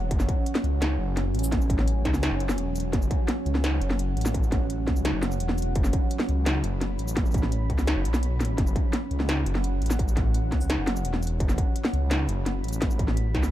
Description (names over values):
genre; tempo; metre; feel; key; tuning
half-time drum and bass; 170 BPM; 4/4; half-time; F# minor; A4 = 438 Hz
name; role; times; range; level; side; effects
deep dark ambient pad; sustained chords; 0.0-13.5 s; F#3 to B5; -33 LUFS; right 1 dB; chorus, built-in reverb, sidechain pumping
dark detuned saw bass; bass; 0.0-13.5 s; E1 to C#2; -26 LUFS; equal; none
electronic kick drum; drums; 0.1-13.4 s; none; -26 LUFS; equal; distortion
industrial drum kit; drums; 0.1-13.5 s; hi-hat, shaker, snare drum; -29 LUFS; equal; none
room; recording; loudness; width
little or no reverb; none; -23 LUFS; side -13 dB against mid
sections
0.0-13.5 A section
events
none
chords
0.0 F#5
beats
| 0.11 0.46 0.81 1.17 | 1.52 1.87 2.23 2.58 | 2.93 3.29 3.64 3.99 | 4.34 4.70 5.05 5.40 | 5.76 6.11 6.46 6.82 | 7.17 7.52 7.87 8.23 | 8.58 8.93 9.29 9.64 | 9.99 10.34 10.70 11.05 | 11.40 11.76 12.11 12.46 | 12.81 13.17